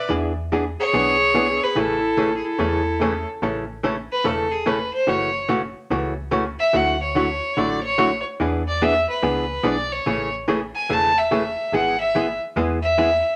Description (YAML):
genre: country, western swing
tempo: 144 BPM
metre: 4/4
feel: swing 65% on 8ths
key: A major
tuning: A4 = 441 Hz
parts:
  - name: bright fiddle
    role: melody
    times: 0.0-13.4 s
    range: G#4 to A5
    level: -24 LUFS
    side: equal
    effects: none
  - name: clear clarinet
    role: second line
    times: 0.0-3.3 s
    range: E4 to B4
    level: -28 LUFS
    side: equal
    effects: none
  - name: archtop guitar, miked and amplified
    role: accompaniment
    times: 0.1-13.1 s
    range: C#3 to A4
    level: -24 LUFS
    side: equal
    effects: none
  - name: metallic FM bass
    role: bass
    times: 0.1-13.2 s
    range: E1 to E2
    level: -33 LUFS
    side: equal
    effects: none
  - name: honky-tonk upright piano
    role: accompaniment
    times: 1.3-3.2 s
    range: A3 to G#4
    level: -30 LUFS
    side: equal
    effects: none
room: moderate studio reverb, RT60 0.7 s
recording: none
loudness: -21 LUFS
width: mono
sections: 0.0-3.4 A section; 3.4-13.4 B section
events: fiddle solo 3.4-13.4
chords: 0.1 E7; 1.8 Amaj7; 3.4 A; 5.1 F#m7; 6.7 Dadd9; 8.4 E7; 10.1 Amaj7; 11.7 E/G#